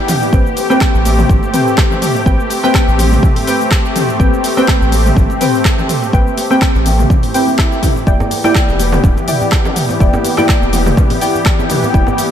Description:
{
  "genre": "afro house",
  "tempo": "124 BPM",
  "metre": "4/4",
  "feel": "swing 54% on 16ths",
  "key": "A minor",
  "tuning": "A4 = 439 Hz",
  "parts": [
    { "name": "warm analog pad", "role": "sustained chords", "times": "0.0-12.3 s", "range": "E3 to G4", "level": "-18 LUFS", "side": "left 1 dB", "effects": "chorus, sidechain pumping" },
    { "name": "deep mellow chord stab", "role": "stabs", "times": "0.0-12.3 s", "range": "C4 to G5", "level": "-17 LUFS", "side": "equal", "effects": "chorus, sidechain pumping, analog delay" },
    { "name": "deep house drum kit", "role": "drums", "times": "0.1-12.3 s", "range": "handclaps, hi-hat, rim click, shaker, toms", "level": "-19 LUFS", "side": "right 1 dB", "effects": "none" },
    { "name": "congas", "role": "percussion", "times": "0.1-12.3 s", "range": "none", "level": "-23 LUFS", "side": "left 2 dB", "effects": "none" },
    { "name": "warm sub bass", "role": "bass", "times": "0.3-12.0 s", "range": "D1 to A1", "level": "-15 LUFS", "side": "equal", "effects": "sidechain pumping" },
    { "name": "electronic kick drum", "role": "drums", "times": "0.3-12.0 s", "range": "none", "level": "-13 LUFS", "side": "equal", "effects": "none" },
    { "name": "swell", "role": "sound effects", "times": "7.2-8.1 s", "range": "none", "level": "-24 LUFS", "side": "right 1 dB", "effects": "none" },
    { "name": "djembe", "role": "percussion", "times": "8.2-12.2 s", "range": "none", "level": "-23 LUFS", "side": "right 2 dB", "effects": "none" }
  ],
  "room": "moderate lush hall reverb, RT60 2.0 s",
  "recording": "dreamy mix soaked in reverb",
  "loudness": "-10 LUFS",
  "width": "side -9 dB against mid",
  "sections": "0.0-12.3 A section",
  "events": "swell 7.2-8.1",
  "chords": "0.3 Am9; 8.1 Em7",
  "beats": "| 0.33 0.81 1.30 1.78 | 2.26 2.75 3.23 3.71 | 4.20 4.68 5.17 5.65 | 6.13 6.62 7.10 7.59 | 8.07 8.55 9.04 9.52 | 10.01 10.49 10.97 11.46 | 11.94"
}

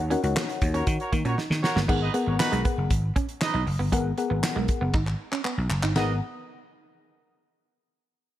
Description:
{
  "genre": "early-eighties boogie funk",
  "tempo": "118 BPM",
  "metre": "4/4",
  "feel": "straight",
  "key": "G# minor",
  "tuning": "A4 = 440 Hz",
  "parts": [
    { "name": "mellow FM electric piano", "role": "accompaniment", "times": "0.0-6.2 s", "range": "B3 to F#5", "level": "-29 LUFS", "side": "left 5 dB", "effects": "chorus" },
    { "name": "vintage slap bass", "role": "bass", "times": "0.0-6.2 s", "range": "F#1 to D#3", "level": "-26 LUFS", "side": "equal", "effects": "none" },
    { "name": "semi-hollow electric guitar", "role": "riff", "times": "0.1-6.1 s", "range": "G#3 to D#4", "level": "-33 LUFS", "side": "right 4 dB", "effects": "lush chorus" },
    { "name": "damped 70s drum kit", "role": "drums", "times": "0.1-6.1 s", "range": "crash cymbal, handclaps, hi-hat, kick drum, ride cymbal, snare drum", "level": "-28 LUFS", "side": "equal", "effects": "gated reverb" },
    { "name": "warm horn section", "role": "second line", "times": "0.7-6.1 s", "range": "B3 to D#5", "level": "-31 LUFS", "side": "right 2 dB", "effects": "none" }
  ],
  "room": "light reverb",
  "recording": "none",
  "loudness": "-23 LUFS",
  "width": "side -13 dB against mid",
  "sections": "0.0-1.9 A section; 1.9-6.0 B section; 6.0-8.0 C section",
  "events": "drum fill 1.4-1.9, 4.9-6.0",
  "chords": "0.0 D#m7; 1.9 G#m9",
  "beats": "0.36 0.87 1.38 | 1.89 2.40 2.91 3.42 | 3.92 4.43 4.94 5.45 | 5.96"
}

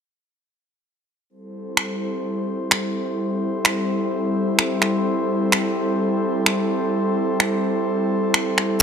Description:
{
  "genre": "future garage",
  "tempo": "128 BPM",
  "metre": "4/4",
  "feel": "swing 64% on 16ths",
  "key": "A minor",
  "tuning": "A4 = 440 Hz",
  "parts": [
    { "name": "airy breathy pad", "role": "sustained chords", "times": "1.5-8.8 s", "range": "G3 to C5", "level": "-21 LUFS", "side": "equal", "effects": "chorus" },
    { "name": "electronic finger snaps", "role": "drums", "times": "1.8-8.7 s", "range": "none", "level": "-19 LUFS", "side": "right 1 dB", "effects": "overdrive" }
  ],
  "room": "moderate lush hall reverb, RT60 1.8 s",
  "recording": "none",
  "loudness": "-19 LUFS",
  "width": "side -7 dB against mid",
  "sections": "1.3-8.8 A section",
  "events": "filter sweep on analog synth pad 1.3-8.8",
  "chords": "1.3 Am7",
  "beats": "| 1.31 1.78 2.25 2.72 | 3.19 3.65 4.12 4.59 | 5.06 5.53 6.00 6.47 | 6.93 7.40 7.87 8.34 | 8.81"
}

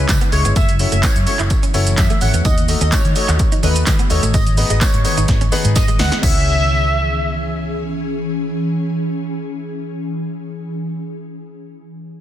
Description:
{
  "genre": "dance-pop",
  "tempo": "127 BPM",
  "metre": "4/4",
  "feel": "straight",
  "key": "C# minor",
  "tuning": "A4 = 440 Hz",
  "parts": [
    { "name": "warm grand piano", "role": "accompaniment", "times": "0.0-10.7 s", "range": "G#3 to F#5", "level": "-26 LUFS", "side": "left 6 dB", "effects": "sidechain pumping" },
    { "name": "ethereal airy pad", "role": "sustained chords", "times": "0.0-10.7 s", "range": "C#3 to G#4", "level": "-24 LUFS", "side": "equal", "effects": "ensemble chorus, built-in reverb, sidechain pumping" },
    { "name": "vintage muted fingered electric bass", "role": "bass", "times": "0.0-10.7 s", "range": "F#1 to D#3", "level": "-18 LUFS", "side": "equal", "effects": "sidechain pumping" },
    { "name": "punchy analog drum machine", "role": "drums", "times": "0.1-6.3 s", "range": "crash cymbal, handclaps, hi-hat, kick drum, shaker, snare drum", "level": "-16 LUFS", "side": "equal", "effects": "none" },
    { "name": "tambourine", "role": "percussion", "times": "0.1-6.5 s", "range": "none", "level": "-32 LUFS", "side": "right 8 dB", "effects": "none" },
    { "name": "direct-recorded clean electric guitar", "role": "riff", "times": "0.2-6.4 s", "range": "G#3 to F#4", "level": "-29 LUFS", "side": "right 10 dB", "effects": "ensemble chorus" },
    { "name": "airy dreamy lead", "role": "melody", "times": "0.3-7.6 s", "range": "B4 to F#5", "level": "-22 LUFS", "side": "equal", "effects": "chorus, sidechain pumping, tape echo" }
  ],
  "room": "light reverb",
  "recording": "dense, heavily limited modern master",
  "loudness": "-14 LUFS",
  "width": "side -12 dB against mid",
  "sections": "0.0-6.2 A section; 6.2-10.0 B section",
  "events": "drop 0.0-6.2; drum fill 5.3-6.2",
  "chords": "0.0 C#m; 0.6 F#m7; 2.5 D#dim; 4.3 G#m; 6.2 C#m",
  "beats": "0.09 | 0.56 1.03 1.51 1.98 | 2.45 2.92 3.40 3.87 | 4.34 4.81 5.29 5.76 | 6.23 6.70 7.17 7.65 | 8.12 8.59 9.06 9.54"
}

